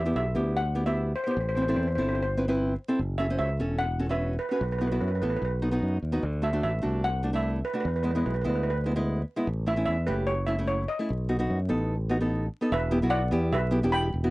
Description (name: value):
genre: calypso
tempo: 148 BPM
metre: 4/4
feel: swing 53% on 16ths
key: E minor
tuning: A4 = 440 Hz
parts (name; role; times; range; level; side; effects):
- steel pan; melody; 0.0-14.3 s; B4 to B5; -30 LUFS; right 1 dB; none
- nylon-string guitar; accompaniment; 0.0-14.3 s; G#3 to C5; -28 LUFS; equal; none
- fingered electric bass; bass; 0.0-14.3 s; E1 to F#2; -28 LUFS; equal; none
room: little or no reverb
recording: dry, gritty hardware recording, transformer saturation, vinyl crackle, nothing above 10.3 kHz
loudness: -25 LUFS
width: side -20 dB against mid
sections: 0.0-12.7 A section; 12.7-14.3 B section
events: none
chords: 0.0 Em7; 1.4 Am7; 3.0 F#m; 4.6 Bsus4; 5.4 B; 6.2 Dadd9; 7.8 E7; 9.5 A; 11.1 B; 12.7 Em7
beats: 0.16 0.57 0.97 | 1.38 1.78 2.19 2.59 | 3.00 3.40 3.80 4.21 | 4.61 5.02 5.42 5.83 | 6.23 6.63 7.04 7.44 | 7.85 8.25 8.66 9.06 | 9.47 9.87 10.28 10.69 | 11.09 11.50 11.90 12.31 | 12.71 13.12 13.52 13.93